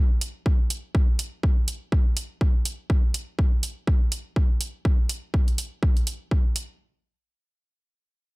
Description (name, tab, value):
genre	minimal techno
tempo	123 BPM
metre	4/4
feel	swing 58% on 16ths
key	none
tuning	none
part	electronic hi-hat	drums	0.2-6.7 s	none	-29 LUFS	right 2 dB	overdrive
part	electronic kick drum	drums	0.5-6.4 s	none	-21 LUFS	equal	overdrive
room	little or no reverb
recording	none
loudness	-22 LUFS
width	side -24 dB against mid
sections	0.0-6.8 A section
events	none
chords	none